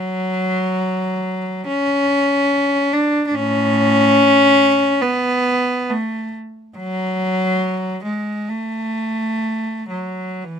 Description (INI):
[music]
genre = classical, free, expressive piece for unaccompanied cello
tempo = free time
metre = none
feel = none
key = unclear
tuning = A4 = 442 Hz
[part]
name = clear cello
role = solo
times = 0.0-10.6 s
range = A2 to D4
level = -16 LUFS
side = equal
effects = none
[sound]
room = little or no reverb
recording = close, detailed microphones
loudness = -16 LUFS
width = side -7 dB against mid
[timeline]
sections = 0.0-10.6 A section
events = none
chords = none